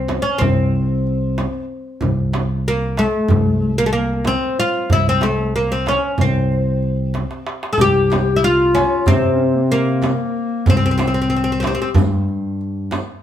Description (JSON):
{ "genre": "Turkish makam ensemble", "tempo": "187 BPM (eighths)", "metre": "9/8", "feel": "straight", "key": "C makam hicaz", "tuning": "A4 = 440 Hz", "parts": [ { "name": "oud", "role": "melody", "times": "0.0-11.9 s", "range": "A3-40c to A4-40c", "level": "-19 LUFS", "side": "left 1 dB", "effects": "none" }, { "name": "barky tine electric piano", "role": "bass", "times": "0.0-13.0 s", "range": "C2 to C3", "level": "-20 LUFS", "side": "equal", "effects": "none" }, { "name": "darbuka", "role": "percussion", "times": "0.1-13.1 s", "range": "none", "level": "-21 LUFS", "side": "right 1 dB", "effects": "none" }, { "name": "frame drum", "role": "percussion", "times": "0.1-13.1 s", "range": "none", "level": "-23 LUFS", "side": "right 2 dB", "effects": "none" }, { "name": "mellow clarinet", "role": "second line", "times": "7.8-12.0 s", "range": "Bb3 to G4", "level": "-22 LUFS", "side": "left 6 dB", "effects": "none" }, { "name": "riq", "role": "percussion", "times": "7.8-13.1 s", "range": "none", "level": "-34 LUFS", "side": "left 2 dB", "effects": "none" } ], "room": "moderate studio reverb, RT60 0.9 s", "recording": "band playing live in one room", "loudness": "-15 LUFS", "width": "side -10 dB against mid", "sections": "0.0-7.8 A section; 7.8-13.2 B section", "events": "drum fill 7.1-7.8", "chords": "none" }